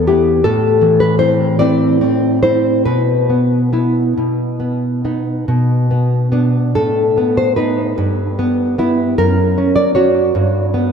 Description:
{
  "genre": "romantic piece for solo classical guitar",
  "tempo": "45-53 BPM (dotted quarters)",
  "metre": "6/8",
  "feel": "rubato",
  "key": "B minor from 5.5 s",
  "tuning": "A4 = 440 Hz",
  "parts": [
    { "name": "nylon-string guitar", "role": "solo", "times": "0.0-10.9 s", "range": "E2 to D5", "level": "-12 LUFS", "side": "equal", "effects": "wide subtle chorus, analog delay" }
  ],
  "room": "wet plate reverb, RT60 3.4 s",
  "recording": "dreamy mix soaked in reverb",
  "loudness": "-12 LUFS",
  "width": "side -6 dB against mid",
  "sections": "0.0-10.9 A section",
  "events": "none",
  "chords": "0.5 Am; 2.9 Bsus4; 4.2 B; 5.5 Bm; 6.8 B7/A; 8.0 Em/G; 9.2 F#; 10.4 Em/G (rootless)"
}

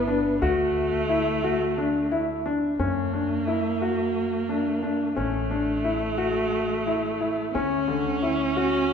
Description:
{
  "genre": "contemporary instrumental, chamber music in an uneven meter",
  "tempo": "177 BPM (eighths)",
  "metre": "7/8",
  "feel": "straight",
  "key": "D major",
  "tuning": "A4 = 436 Hz",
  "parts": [
    { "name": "warm viola", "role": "second line", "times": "0.0-8.9 s", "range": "A3 to C#4", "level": "-27 LUFS", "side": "right 1 dB", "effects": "none" },
    { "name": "upright bass", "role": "bass", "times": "0.0-8.9 s", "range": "G1 to F#2", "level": "-33 LUFS", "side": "left 1 dB", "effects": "none" },
    { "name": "warm baby grand piano", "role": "arpeggios", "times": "0.1-8.9 s", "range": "D3 to F#4", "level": "-25 LUFS", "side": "left 2 dB", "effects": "none" }
  ],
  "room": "wet concert hall reverb, RT60 2.2 s",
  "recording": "recorded in a church or concert hall",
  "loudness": "-23 LUFS",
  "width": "side -7 dB against mid",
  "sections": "0.0-2.8 A section; 2.8-8.9 B section",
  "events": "none",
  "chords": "0.4 D; 2.8 F#aug; 5.2 A5; 7.5 Dmaj7"
}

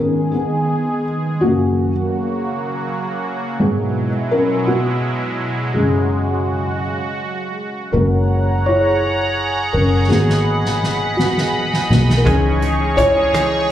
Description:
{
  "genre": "six-eight pop ballad",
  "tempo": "55 BPM (dotted quarters)",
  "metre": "6/8",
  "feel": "straight",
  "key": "unclear",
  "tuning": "A4 = 440 Hz",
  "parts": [
    { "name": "felt-muted upright piano", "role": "accompaniment", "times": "0.0-13.7 s", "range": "F#2 to C#5", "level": "-18 LUFS", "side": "left 1 dB", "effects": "plate reverb, slapback echo" },
    { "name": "sweeping resonant pad", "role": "sustained chords", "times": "0.0-13.7 s", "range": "B2 to C#6", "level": "-20 LUFS", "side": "right 1 dB", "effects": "chorus, plate reverb" },
    { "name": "fingered electric bass", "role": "bass", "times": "7.9-13.7 s", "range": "F#1 to C#2", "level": "-19 LUFS", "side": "equal", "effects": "none" },
    { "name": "soft-mallet drum kit", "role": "drums", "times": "10.1-13.5 s", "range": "hi-hat, kick drum, rim click, snare drum", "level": "-22 LUFS", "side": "equal", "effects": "none" },
    { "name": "direct-recorded clean electric guitar", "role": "arpeggios", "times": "12.3-13.7 s", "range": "C#3 to G#4", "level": "-22 LUFS", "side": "right 1 dB", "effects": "ensemble chorus, plate reverb, slapback echo" }
  ],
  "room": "moderate club reverb, RT60 0.6 s",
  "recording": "live gig heard through the venue's PA, club reverb, lossy compression artefacts",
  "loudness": "-15 LUFS",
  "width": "side -11 dB against mid",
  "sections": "0.0-7.9 A section; 7.9-13.7 B section",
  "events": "felt piano solo 0.0-7.9, 7.9-13.7; drum fill 10.1-12.3",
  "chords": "0.0 G#m; 1.4 F#; 3.6 Eadd9/G#; 5.8 F#sus2; 7.9 F#add9; 10.1 G#m7; 12.3 C#madd9"
}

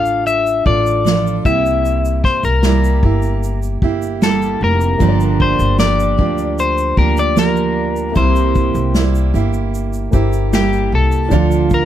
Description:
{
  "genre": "acoustic pop",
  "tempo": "76 BPM",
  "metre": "4/4",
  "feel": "straight",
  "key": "C mixolydian",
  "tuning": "A4 = 439 Hz",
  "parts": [
    { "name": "electric guitar at the edge of break-up", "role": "melody", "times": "0.0-11.8 s", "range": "G4 to F5", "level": "-18 LUFS", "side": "left 5 dB", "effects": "none" },
    { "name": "picked steel-string acoustic guitar", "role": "accompaniment", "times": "0.0-11.8 s", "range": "G2 to A4", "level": "-18 LUFS", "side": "right 8 dB", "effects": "none" },
    { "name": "upright bass", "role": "bass", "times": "0.0-11.8 s", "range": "F1 to D2", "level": "-17 LUFS", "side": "left 1 dB", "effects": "none" },
    { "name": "unplugged drum kit", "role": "drums", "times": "0.1-11.8 s", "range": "kick drum, shaker, snare drum", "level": "-18 LUFS", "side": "left 1 dB", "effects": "none" },
    { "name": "warm upright piano", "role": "accompaniment", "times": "5.0-11.8 s", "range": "F3 to D5", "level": "-25 LUFS", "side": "left 2 dB", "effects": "none" }
  ],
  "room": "little or no reverb",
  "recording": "none",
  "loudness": "-13 LUFS",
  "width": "side -11 dB against mid",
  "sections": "0.0-11.8 A section",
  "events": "none",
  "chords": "0.0 Dm; 1.4 C7; 5.0 Gm7; 8.2 C7; 11.3 Dm"
}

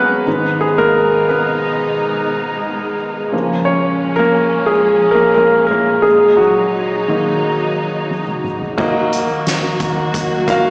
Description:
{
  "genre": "piano-driven pop",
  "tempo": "88 BPM",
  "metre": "4/4",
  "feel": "straight",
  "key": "unclear",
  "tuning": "A4 = 439 Hz",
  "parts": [
    { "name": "warm concert grand piano", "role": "accompaniment", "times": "0.0-10.7 s", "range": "F#2 to E#5", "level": "-16 LUFS", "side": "equal", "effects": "slapback echo" },
    { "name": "warm studio string section", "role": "sustained chords", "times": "0.0-10.7 s", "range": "A#2 to F#4", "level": "-24 LUFS", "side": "equal", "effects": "none" },
    { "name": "soft-mallet drum kit", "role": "drums", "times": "8.1-10.6 s", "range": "crash cymbal, hi-hat, kick drum, snare drum, toms", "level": "-25 LUFS", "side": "equal", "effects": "none" },
    { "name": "vintage muted fingered electric bass", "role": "bass", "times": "8.8-10.7 s", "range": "D#2", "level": "-29 LUFS", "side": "equal", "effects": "none" }
  ],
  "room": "moderate lush hall reverb, RT60 2.2 s",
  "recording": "live gig heard through the venue's PA, recital hall reverb, small speaker sound",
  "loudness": "-15 LUFS",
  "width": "mono",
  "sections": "0.0-8.8 A section; 8.8-10.7 B section",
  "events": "grand piano solo 0.0-8.8; drum fill 8.1-8.8",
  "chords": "0.3 G#m; 3.3 C#6; 6.1 D#m"
}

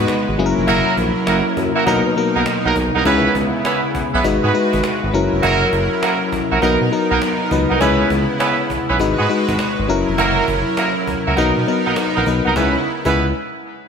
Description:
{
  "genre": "R&B, new jack swing",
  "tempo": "101 BPM",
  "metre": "4/4",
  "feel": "swing 66% on 16ths",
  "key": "C# dorian",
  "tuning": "A4 = 440 Hz",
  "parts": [
    { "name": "FM electric piano", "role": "accompaniment", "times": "0.0-13.3 s", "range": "F#3 to G#5", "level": "-20 LUFS", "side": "left 5 dB", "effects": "chorus" },
    { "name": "lush unison pad", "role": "sustained chords", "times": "0.0-12.8 s", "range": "B2 to B4", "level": "-22 LUFS", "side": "right 2 dB", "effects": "chorus" },
    { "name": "smooth synth bass", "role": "bass", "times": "0.0-13.3 s", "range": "E#1 to B2", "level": "-22 LUFS", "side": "right 1 dB", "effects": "none" },
    { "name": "cajon", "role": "drums", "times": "0.1-13.1 s", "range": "none", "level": "-27 LUFS", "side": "equal", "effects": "none" },
    { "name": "clear horn section", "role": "stabs", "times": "0.7-13.3 s", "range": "A#3 to B4", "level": "-20 LUFS", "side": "right 4 dB", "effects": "ping-pong delay" }
  ],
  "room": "moderate lush hall reverb, RT60 2.4 s",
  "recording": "bright 1980s-style digital production",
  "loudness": "-15 LUFS",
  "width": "side -6 dB against mid",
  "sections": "0.0-3.1 A section; 3.1-12.6 B section; 12.6-13.9 C section",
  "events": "none",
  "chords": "0.4 F#7; 1.9 Bmaj7; 3.1 C#m7; 4.2 G#m7; 5.1 F#7; 6.6 Bmaj7; 7.8 C#m7; 9.0 G#m7; 9.9 F#7; 11.4 Bmaj7; 12.6 C#m7"
}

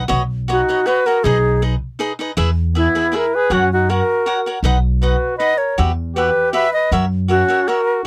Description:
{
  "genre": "mexican folk, mariachi",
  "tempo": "158 BPM",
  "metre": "3/4",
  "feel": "straight",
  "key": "B major",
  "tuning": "A4 = 442 Hz",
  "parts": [
    { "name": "cavaquinho", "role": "accompaniment", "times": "0.0-7.8 s", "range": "D#4 to F#5", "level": "-24 LUFS", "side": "equal", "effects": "none" },
    { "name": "upright bass", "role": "bass", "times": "0.0-7.4 s", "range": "B1 to F#2", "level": "-20 LUFS", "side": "equal", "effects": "none" },
    { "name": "bright reedy alto flute", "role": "melody", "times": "0.5-8.1 s", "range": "E4 to E5", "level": "-18 LUFS", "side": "equal", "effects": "none" },
    { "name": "mellow trumpet", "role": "second line", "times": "0.5-8.1 s", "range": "B3 to B4", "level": "-28 LUFS", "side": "equal", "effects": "none" }
  ],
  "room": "light reverb",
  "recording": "dry, close 1970s-style studio recording",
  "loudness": "-17 LUFS",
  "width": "mono",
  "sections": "0.0-8.1 A section",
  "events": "none",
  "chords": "0.0 Badd9; 1.2 G#m/B; 2.4 E; 3.5 F#; 4.6 B; 5.8 Emadd9; 6.9 F#7"
}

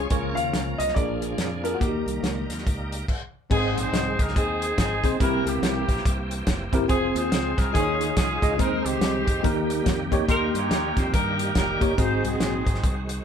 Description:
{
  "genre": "uptempo gospel",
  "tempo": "142 BPM",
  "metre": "4/4",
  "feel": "swing 62% on 8ths",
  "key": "Ab major",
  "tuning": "A4 = 440 Hz",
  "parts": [
    { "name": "bell-like tine electric piano", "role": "accompaniment", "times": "0.0-12.6 s", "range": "Ab2 to C6", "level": "-26 LUFS", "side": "equal", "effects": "medium stereo tremolo" },
    { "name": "bright tonewheel organ", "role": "sustained chords", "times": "0.0-13.2 s", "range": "Eb3 to Db5", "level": "-33 LUFS", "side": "right 3 dB", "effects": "fast rotary speaker, overdrive, chorus vibrato" },
    { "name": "fingered electric bass", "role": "bass", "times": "0.0-13.2 s", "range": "F1 to G2", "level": "-31 LUFS", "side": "equal", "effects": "none" },
    { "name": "warm soul drum kit", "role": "drums", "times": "0.1-13.2 s", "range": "crash cymbal, hi-hat, kick drum, snare drum", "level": "-26 LUFS", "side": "equal", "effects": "none" },
    { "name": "warm baby grand piano", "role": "melody", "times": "0.4-3.0 s", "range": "Gb4 to F5", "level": "-29 LUFS", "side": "left 2 dB", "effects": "none" },
    { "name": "warm horn section", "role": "melody", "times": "3.5-13.1 s", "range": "Bb3 to Db5", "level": "-27 LUFS", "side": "left 1 dB", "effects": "none" }
  ],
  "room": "moderate small room reverb, RT60 0.5 s",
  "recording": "band playing live in one room",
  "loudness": "-22 LUFS",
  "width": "side -8 dB against mid",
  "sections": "0.0-3.5 A section; 3.5-13.2 B section",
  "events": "stop 3.1-3.5",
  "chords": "0.1 Bbm/Db; 1.0 Bb7; 1.8 Eb; 3.5 Ab; 5.2 C7; 6.9 Fm; 7.7 Eb9sus4; 9.4 Eb; 12.0 Ab7"
}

